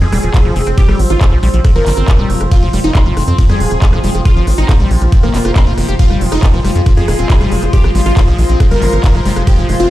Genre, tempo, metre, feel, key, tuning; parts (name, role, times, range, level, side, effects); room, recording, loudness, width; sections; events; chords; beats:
psychedelic trance; 138 BPM; 4/4; straight; F minor; A4 = 441 Hz
supersaw stab; melody; 0.0-9.9 s; Bb3 to Bb4; -20 LUFS; equal; phaser, sidechain pumping, dub echo
overtone-sweeping drone; sustained chords; 0.0-9.9 s; F3 to C4; -23 LUFS; equal; chorus, built-in reverb, sidechain pumping
liquid acid bass; riff; 0.0-9.9 s; Eb3 to G4; -21 LUFS; left 1 dB; chorus, auto-pan, sidechain pumping, ping-pong delay
tight sequencer bass; bass; 0.0-9.9 s; Eb1 to F2; -14 LUFS; equal
warbly tape-like pad; texture; 0.3-9.9 s; F4 to C6; -24 LUFS; left 2 dB; chorus, built-in reverb, sidechain pumping
techno drum kit; drums; 0.1-9.9 s; handclaps, hi-hat, ride cymbal, rim click; -23 LUFS; equal; overdrive, studio reverb
electronic kick drum; drums; 0.3-9.6 s; -10 LUFS; equal; studio reverb
vowel-sweep wobble bass; second line; 1.1-9.9 s; Ab3 to Eb4; -30 LUFS; left 3 dB
little or no reverb; played on a big sound system in a bare room, large studio reverb; -9 LUFS; side -15 dB against mid
0.0-9.9 A section
0.0 F5
0.34 | 0.78 1.21 1.65 2.08 | 2.52 2.95 3.38 3.82 | 4.25 4.69 5.12 5.56 | 5.99 6.43 6.86 7.30 | 7.73 8.17 8.60 9.04 | 9.47